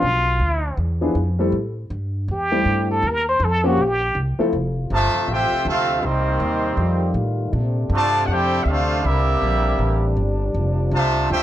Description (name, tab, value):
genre	jazz, big band swing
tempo	160 BPM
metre	4/4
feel	swing 63% on 8ths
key	F major from 4.5 s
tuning	A4 = 442 Hz
part	trumpet with plunger mute	melody	0.0-4.2 s	F4 to C5	-20 LUFS	equal	none
part	warm grand piano	accompaniment	0.0-4.5 s	F3 to A4	-21 LUFS	left 2 dB	none
part	upright bass	bass	0.0-11.4 s	F1 to Bb2	-22 LUFS	equal	none
part	mellow trombone section	sustained chords	4.5-11.4 s	C3 to F4	-26 LUFS	left 1 dB	none
part	clear trumpet section	melody	4.9-11.4 s	Bb3 to A5	-22 LUFS	right 1 dB	none
part	muted trombone section	second line	4.9-11.4 s	C3 to G4	-25 LUFS	right 2 dB	none
room	light reverb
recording	none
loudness	-18 LUFS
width	side -12 dB against mid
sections	0.0-4.5 A section; 4.5-11.4 B section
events	muted trumpet solo 0.0-4.5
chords	0.0 Bdim; 0.8 E7b9; 1.5 Am7; 3.0 Eb69; 4.5 Fmaj7; 6.0 Cm7; 6.8 F9; 7.5 Bbmaj9; 9.0 C13; 10.5 Fmaj7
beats	| 0.03 0.41 0.78 1.16 | 1.53 1.91 2.28 2.66 | 3.04 3.41 3.79 4.16 | 4.54 4.91 5.29 5.66 | 6.04 6.41 6.79 7.16 | 7.54 7.92 8.29 8.67 | 9.04 9.42 9.79 10.17 | 10.55 10.92 11.30